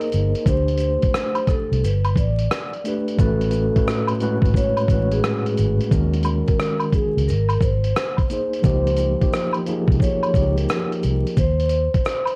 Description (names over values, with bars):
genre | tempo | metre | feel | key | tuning
lo-fi hip hop | 88 BPM | 4/4 | swing 64% on 16ths | unclear | A4 = 439 Hz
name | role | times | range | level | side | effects
vibraphone with soft mallets | melody | 0.0-12.4 s | Ab4 to D5 | -27 LUFS | equal | low-pass filter
mellow tine electric piano | accompaniment | 0.0-11.4 s | A2 to Eb5 | -26 LUFS | equal | low-pass filter
dusty soul sampler-style drum kit | drums | 0.0-12.4 s | hi-hat, kick drum, rim click | -24 LUFS | equal | none
vintage muted fingered electric bass | bass | 0.1-11.9 s | G1 to Eb2 | -23 LUFS | equal | transformer saturation
maracas and woodblock | percussion | 0.1-12.4 s | none | -30 LUFS | equal | none
room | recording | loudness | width
light reverb | worn, warbling old tape, cassette tape, vinyl crackle, warbly pitch drift | -20 LUFS | mono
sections
0.0-12.4 A section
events
none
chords
0.5 D5; 1.8 Gadd9; 3.2 A6; 5.9 Ebm7; 7.3 Ab; 8.6 Dbmaj7; 11.4 N.C.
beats
| 0.46 1.14 1.82 2.51 | 3.19 3.87 4.55 5.23 | 5.92 6.60 7.28 7.96 | 8.64 9.32 10.01 10.69 | 11.37 12.05